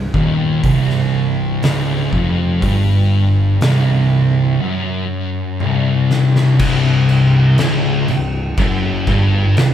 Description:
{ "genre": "stoner and doom metal", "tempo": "60 BPM", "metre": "4/4", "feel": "straight", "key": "C minor", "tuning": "A4 = 440 Hz", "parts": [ { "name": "thick fuzz guitar", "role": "riff", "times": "0.0-9.7 s", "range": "C2 to G2", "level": "-16 LUFS", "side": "left 3 dB", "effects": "distortion" }, { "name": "thick fuzz guitar", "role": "riff", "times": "0.0-9.7 s", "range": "C2 to G2", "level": "-18 LUFS", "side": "right 4 dB", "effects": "distortion" }, { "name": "overdriven picked electric bass", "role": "bass", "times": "0.0-9.7 s", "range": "C1 to G1", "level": "-23 LUFS", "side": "equal", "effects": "none" }, { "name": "oversized low-tuned drum kit", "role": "drums", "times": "0.1-9.7 s", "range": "crash cymbal, hi-hat, kick drum, snare drum, toms", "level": "-22 LUFS", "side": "equal", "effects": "none" }, { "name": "heavy high-gain guitar", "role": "riff", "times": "6.6-9.7 s", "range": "C2 to G2", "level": "-24 LUFS", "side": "equal", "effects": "distortion" } ], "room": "wet large studio reverb, RT60 1.3 s", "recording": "band playing live in one room", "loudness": "-13 LUFS", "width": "side -10 dB against mid", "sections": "0.0-6.6 A section; 6.6-9.7 B section", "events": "break 4.6-6.6; drum fill 5.6-6.6", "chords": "0.0 Cm; 6.6 C5" }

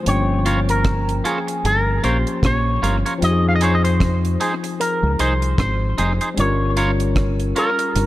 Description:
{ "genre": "lovers rock reggae", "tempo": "76 BPM", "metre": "4/4", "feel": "swing 58% on 16ths", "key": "unclear", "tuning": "A4 = 440 Hz", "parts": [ { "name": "electric guitar with an envelope filter", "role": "melody", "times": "0.0-8.1 s", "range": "Ab4 to F5", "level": "-22 LUFS", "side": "equal", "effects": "tape echo" }, { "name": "barky tine electric piano", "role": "accompaniment", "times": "0.0-8.1 s", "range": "F3 to G5", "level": "-24 LUFS", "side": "left 4 dB", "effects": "tape echo" }, { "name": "deep dub fingered electric bass", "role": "bass", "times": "0.1-8.1 s", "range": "F1 to F2", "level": "-19 LUFS", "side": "equal", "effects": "none" }, { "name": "deep reggae drum kit", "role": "drums", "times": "0.1-8.1 s", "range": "hi-hat, kick drum, rim click", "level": "-23 LUFS", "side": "equal", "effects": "tape echo" }, { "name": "twangy electric guitar", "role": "stabs", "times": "0.5-7.8 s", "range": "Eb4 to Db5", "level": "-26 LUFS", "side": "right 2 dB", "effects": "none" } ], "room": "light reverb, studio reverb", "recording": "none", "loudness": "-16 LUFS", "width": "side -15 dB against mid", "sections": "0.0-8.1 A section", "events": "none", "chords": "0.1 Gm7b5; 3.2 Fm7; 6.4 Gm7b5" }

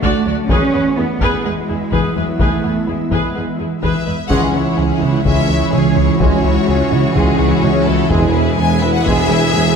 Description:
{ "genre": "cinematic, hybrid orchestral and electronic film score", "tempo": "126 BPM", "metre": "4/4", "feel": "straight", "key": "C# minor", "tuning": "A4 = 439 Hz", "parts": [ { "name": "rich studio viola section", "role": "accompaniment", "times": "0.0-9.8 s", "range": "E3 to D5", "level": "-22 LUFS", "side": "left 1 dB", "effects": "none" }, { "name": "ethereal airy pad", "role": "sustained chords", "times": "0.0-9.8 s", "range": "E3 to E5", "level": "-20 LUFS", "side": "right 1 dB", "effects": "ensemble chorus, built-in reverb" }, { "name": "glassy wavetable pluck", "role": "arpeggios", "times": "0.0-9.7 s", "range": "C#3 to E4", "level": "-26 LUFS", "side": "left 5 dB", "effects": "none" }, { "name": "dark symphonic cello section", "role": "bass", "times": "0.0-9.8 s", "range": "F#3 to G#4", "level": "-22 LUFS", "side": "right 3 dB", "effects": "none" }, { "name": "rich studio double bass section", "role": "bass", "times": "0.0-9.8 s", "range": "C#2 to E2", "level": "-22 LUFS", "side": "right 3 dB", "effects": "none" }, { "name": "taiko ensemble", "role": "drums", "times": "0.0-9.5 s", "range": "none", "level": "-21 LUFS", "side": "left 1 dB", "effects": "none" }, { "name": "warm studio violin section", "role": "melody", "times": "3.8-9.8 s", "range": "G#4 to G#5", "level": "-22 LUFS", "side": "left 5 dB", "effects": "none" }, { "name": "warm symphonic violin section", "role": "second line", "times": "4.3-9.8 s", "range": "C#4 to C#5", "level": "-22 LUFS", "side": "left 3 dB", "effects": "none" }, { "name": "bright trombone section", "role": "sustained chords", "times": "4.3-9.2 s", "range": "E3 to G#3", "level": "-27 LUFS", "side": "right 2 dB", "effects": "none" }, { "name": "smooth gliding synth bass", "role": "riff", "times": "4.3-9.7 s", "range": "C#2 to E3", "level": "-20 LUFS", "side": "right 1 dB", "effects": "none" }, { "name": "mellow tuba", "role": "bass", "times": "4.3-9.8 s", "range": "E1 to C#2", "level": "-21 LUFS", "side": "right 3 dB", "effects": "none" } ], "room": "wet scoring stage reverb, RT60 1.8 s", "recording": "none", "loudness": "-13 LUFS", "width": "side -6 dB against mid", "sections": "0.0-4.3 A section; 4.3-9.8 B section", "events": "band accent 4.3-4.8", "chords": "0.5 E; 4.3 C#m; 8.1 E" }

